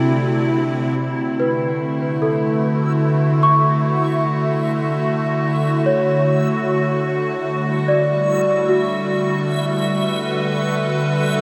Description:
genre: ambient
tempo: 74 BPM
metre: 4/4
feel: straight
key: D major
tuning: A4 = 440 Hz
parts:
  - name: evolving wavetable pad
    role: sustained chords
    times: 0.0-11.4 s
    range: C3 to D5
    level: -20 LUFS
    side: equal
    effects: chorus, built-in reverb, shimmer reverb
  - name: celesta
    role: arpeggios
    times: 0.0-11.4 s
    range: C4 to C#6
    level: -24 LUFS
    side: equal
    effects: tape echo, shimmer reverb
  - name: bowed-like drone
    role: drone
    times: 0.0-11.4 s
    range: D3 to A3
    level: -34 LUFS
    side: equal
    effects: none
  - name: backwards swelling texture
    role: texture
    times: 1.6-11.4 s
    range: E5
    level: -31 LUFS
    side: equal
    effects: built-in reverb, shimmer reverb
room: wet huge ambient reverb, RT60 8.8 s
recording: none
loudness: -19 LUFS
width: mono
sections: 1.0-11.4 A section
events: none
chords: 0.0 Cadd9; 1.0 Dmaj7; 7.5 Gmaj9

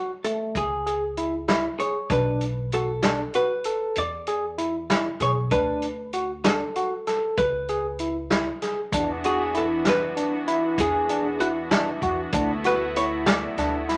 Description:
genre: progressive instrumental, band music in an uneven meter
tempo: 194 BPM (eighths)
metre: 11/8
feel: straight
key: unclear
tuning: A4 = 440 Hz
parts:
  - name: archtop guitar, miked and amplified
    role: melody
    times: 0.0-13.9 s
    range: E4 to D5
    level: -29 LUFS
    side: equal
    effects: none
  - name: barky tine electric piano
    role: arpeggios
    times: 0.0-14.0 s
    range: A3 to A4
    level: -29 LUFS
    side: equal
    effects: none
  - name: vintage drum kit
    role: drums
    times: 0.2-14.0 s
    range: hi-hat, kick drum, snare drum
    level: -29 LUFS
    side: equal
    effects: none
  - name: upright bass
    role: bass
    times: 0.5-14.0 s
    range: B1 to E2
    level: -36 LUFS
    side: equal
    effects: none
  - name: brassy analog pad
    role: accompaniment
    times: 8.9-14.0 s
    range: E3 to F#4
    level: -33 LUFS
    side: equal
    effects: chorus
  - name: tube shaker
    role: percussion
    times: 8.9-14.0 s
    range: none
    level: -56 LUFS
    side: equal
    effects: none
room: wet club reverb, RT60 0.7 s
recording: none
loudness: -25 LUFS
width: mono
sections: 0.0-8.9 A section; 8.9-14.0 B section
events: none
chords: 0.0 Dmaj7 (rootless); 0.6 C#m; 2.1 Bm7; 4.0 E7; 5.5 D; 7.4 C#m7; 8.9 E7; 12.3 D6

